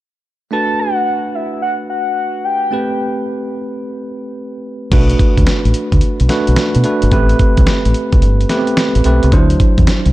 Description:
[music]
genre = R&B, new jack swing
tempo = 109 BPM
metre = 4/4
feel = swing 66% on 16ths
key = unclear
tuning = A4 = 440 Hz
[part]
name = soft octave-layered synth lead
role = melody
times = 0.5-3.5 s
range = E5 to A5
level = -18 LUFS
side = left 1 dB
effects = chorus, phaser
[part]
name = bell-like tine electric piano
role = accompaniment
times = 0.5-10.1 s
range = F#3 to C5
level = -18 LUFS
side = right 1 dB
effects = medium stereo tremolo
[part]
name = deep dub fingered electric bass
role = bass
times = 4.9-10.1 s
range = G1 to B2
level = -13 LUFS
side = equal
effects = none
[part]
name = dusty soul sampler-style drum kit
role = drums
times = 4.9-10.1 s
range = crash cymbal, hi-hat, kick drum, snare drum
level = -14 LUFS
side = equal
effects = none
[sound]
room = light reverb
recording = dark, warm production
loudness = -12 LUFS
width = side -16 dB against mid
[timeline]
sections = 0.5-4.9 A section; 4.9-10.1 B section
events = none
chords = 0.5 Bm7; 2.7 Am9; 4.9 Bm7; 7.1 Am9; 9.3 D9

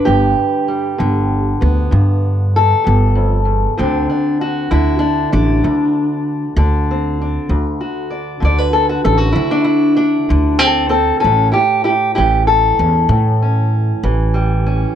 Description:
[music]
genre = acoustic country blues, solo or duo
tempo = 64 BPM (dotted quarters)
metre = 12/8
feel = straight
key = D mixolydian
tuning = A4 = 439 Hz
[part]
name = fingerpicked steel-string acoustic guitar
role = melody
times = 0.0-15.0 s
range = D2 to D5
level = -15 LUFS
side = equal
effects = none
[part]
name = upright bass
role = bass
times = 0.1-14.8 s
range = G1 to D3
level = -16 LUFS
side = equal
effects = none
[sound]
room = little or no reverb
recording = dry, close 1970s-style studio recording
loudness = -12 LUFS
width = side -9 dB against mid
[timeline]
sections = 0.0-15.0 A section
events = none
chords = 0.0 G; 3.8 D7; 11.2 A7

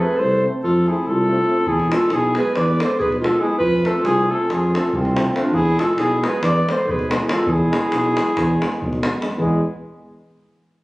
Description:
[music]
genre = balkan folk, Balkan brass band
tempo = 280 BPM (eighths)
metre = 9/8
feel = straight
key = E phrygian dominant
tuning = A4 = 440 Hz
[part]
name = mellow flugelhorn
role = melody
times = 0.0-9.6 s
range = F4 to D5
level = -22 LUFS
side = equal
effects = none
[part]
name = dark clarinet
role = second line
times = 0.0-9.6 s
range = C4 to B4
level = -21 LUFS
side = equal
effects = none
[part]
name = bright trombone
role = accompaniment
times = 0.0-9.6 s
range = G#3 to A3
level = -31 LUFS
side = right 1 dB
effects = none
[part]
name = dark euphonium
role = accompaniment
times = 0.0-9.6 s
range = B3 to C4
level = -30 LUFS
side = left 1 dB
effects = none
[part]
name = mellow tuba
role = bass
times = 0.2-9.6 s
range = B1 to F2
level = -22 LUFS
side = equal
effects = none
[part]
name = davul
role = percussion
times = 1.7-9.6 s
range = none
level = -27 LUFS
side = left 1 dB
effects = none
[sound]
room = moderate recital hall reverb, RT60 1.4 s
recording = recorded on a phone in the room, studio reverb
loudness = -16 LUFS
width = side -20 dB against mid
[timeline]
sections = 0.0-9.4 A section; 9.4-10.8 B section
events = none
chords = 0.0 F; 1.7 E; 3.6 F; 5.5 E

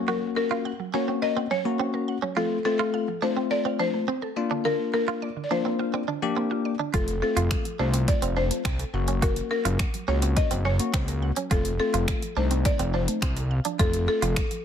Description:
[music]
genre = dance-pop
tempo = 105 BPM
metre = 4/4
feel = straight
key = unclear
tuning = A4 = 438 Hz
[part]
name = bell-like tine electric piano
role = accompaniment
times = 0.0-14.4 s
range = A3 to G4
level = -29 LUFS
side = left 7 dB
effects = wide subtle chorus, sidechain pumping
[part]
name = mallet-like synth pluck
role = arpeggios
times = 0.0-14.6 s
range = D3 to Gb5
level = -35 LUFS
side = right 7 dB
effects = chorus, sidechain pumping, ping-pong delay
[part]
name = direct-recorded clean electric guitar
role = riff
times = 0.0-14.4 s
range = Bb3 to Gb4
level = -32 LUFS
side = right 7 dB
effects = lush chorus
[part]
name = buzzing marimba with medium mallets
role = melody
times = 0.1-14.6 s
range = A4 to Eb5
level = -29 LUFS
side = left 2 dB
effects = ping-pong delay
[part]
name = fat analog bass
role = bass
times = 6.9-14.4 s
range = F1 to Db2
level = -26 LUFS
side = equal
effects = sidechain pumping
[part]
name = deep house drum kit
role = drums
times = 6.9-14.6 s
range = finger snaps, hi-hat, kick drum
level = -26 LUFS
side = equal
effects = soft clipping on snare
[sound]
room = light reverb, digital ambience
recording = dense, heavily limited modern master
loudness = -23 LUFS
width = side -8 dB against mid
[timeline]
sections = 0.0-14.6 A section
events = none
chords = 0.0 Gb; 2.4 F; 4.4 Bb; 6.9 F; 8.9 Gb; 11.5 F

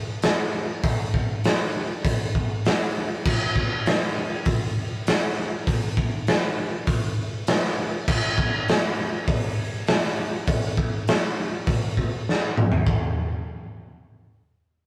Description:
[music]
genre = rock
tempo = 100 BPM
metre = 4/4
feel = straight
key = none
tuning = none
[part]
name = raw garage drum kit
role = drums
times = 0.2-13.0 s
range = crash cymbal, hi-hat, kick drum, snare drum, toms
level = -24 LUFS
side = equal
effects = none
[sound]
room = light reverb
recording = rough rehearsal-room recording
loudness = -24 LUFS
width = mono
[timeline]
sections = 0.0-12.9 A section; 12.9-14.9 B section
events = drum fill 12.3-12.9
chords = none

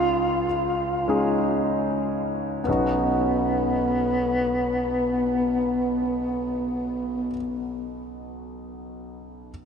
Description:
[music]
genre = pop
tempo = free time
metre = none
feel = none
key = B major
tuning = A4 = 440 Hz
[part]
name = mellow alto saxophone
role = melody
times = 0.0-7.3 s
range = B3 to E#4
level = -25 LUFS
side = equal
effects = ping-pong delay
[part]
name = warm concert grand piano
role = accompaniment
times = 0.0-9.5 s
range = B1 to G#4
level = -26 LUFS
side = left 1 dB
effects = none
[sound]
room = wet huge ambient reverb, RT60 4.7 s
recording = dreamy mix soaked in reverb, lossy compression artefacts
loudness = -22 LUFS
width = side -6 dB against mid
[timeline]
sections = 0.0-2.7 A section; 2.7-7.0 B section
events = slowing down 0.0-2.7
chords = 0.0 C#add9; 2.7 Badd9

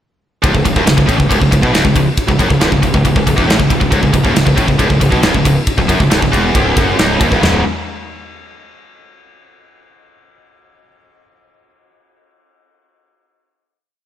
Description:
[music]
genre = heavy metal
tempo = 138 BPM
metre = 4/4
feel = straight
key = C# minor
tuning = A4 = 440 Hz
[part]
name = heavy high-gain guitar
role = riff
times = 0.4-7.6 s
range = C#2 to C#3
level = -13 LUFS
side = equal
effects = distortion, slapback echo
[part]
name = fuzz fingered electric bass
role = bass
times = 0.4-7.6 s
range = C#1 to B1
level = -18 LUFS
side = equal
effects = overdrive
[part]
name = modern studio drum kit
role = drums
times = 0.4-7.5 s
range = china cymbal, kick drum, ride cymbal, snare drum, toms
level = -15 LUFS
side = equal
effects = none
[sound]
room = light reverb, studio reverb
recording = none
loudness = -10 LUFS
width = side -10 dB against mid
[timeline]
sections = 0.4-7.4 riff; 7.4-9.2 final chord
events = none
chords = 0.4 N.C.; 7.4 C#5

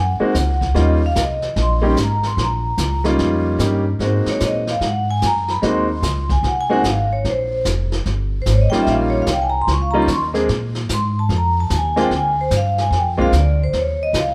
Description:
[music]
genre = jazz, small-group swing and bop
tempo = 148 BPM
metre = 4/4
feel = swing 65% on 8ths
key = Eb mixolydian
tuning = A4 = 439 Hz
[part]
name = vibraphone with medium mallets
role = melody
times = 0.0-14.3 s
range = Bb4 to Db6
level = -23 LUFS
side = equal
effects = none
[part]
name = upright bass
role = bass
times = 0.0-14.3 s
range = F1 to Bb2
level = -22 LUFS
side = equal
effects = none
[part]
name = bright grand piano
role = accompaniment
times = 0.2-13.3 s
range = G3 to Ab4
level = -22 LUFS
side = equal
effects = none
[part]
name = jazz brush drum kit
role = drums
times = 0.3-14.3 s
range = brushed snare drum, hi-hat, kick drum, snare drum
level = -28 LUFS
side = equal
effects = none
[sound]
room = moderate large studio reverb, RT60 1.3 s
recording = band playing live in one room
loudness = -18 LUFS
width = mono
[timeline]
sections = 0.0-14.3 A section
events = vibraphone solo 0.0-14.3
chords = 0.0 Ab7; 0.8 Eb7; 4.0 Ab7; 7.2 Eb7; 10.5 Bb7; 13.7 Eb7(no3)

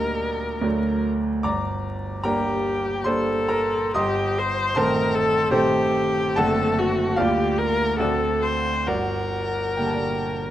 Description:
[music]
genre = classical, romantic duo for viola and grand piano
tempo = 73 BPM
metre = 3/4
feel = uneven beats, rubato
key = G minor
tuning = A4 = 440 Hz
[part]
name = clear viola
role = melody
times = 0.0-10.5 s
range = F#4 to C5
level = -24 LUFS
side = left 2 dB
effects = none
[part]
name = bright grand piano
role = accompaniment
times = 0.0-10.5 s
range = F#1 to Eb6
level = -23 LUFS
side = right 1 dB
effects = none
[sound]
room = light reverb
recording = close, detailed microphones, vinyl crackle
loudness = -20 LUFS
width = side -12 dB against mid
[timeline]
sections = 0.0-10.5 A section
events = none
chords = 0.0 Gm/D; 0.6 D; 1.5 Gm; 4.0 Am7b5/G; 6.4 D7/F#; 7.2 Gm/D; 8.0 D7; 8.9 Gm

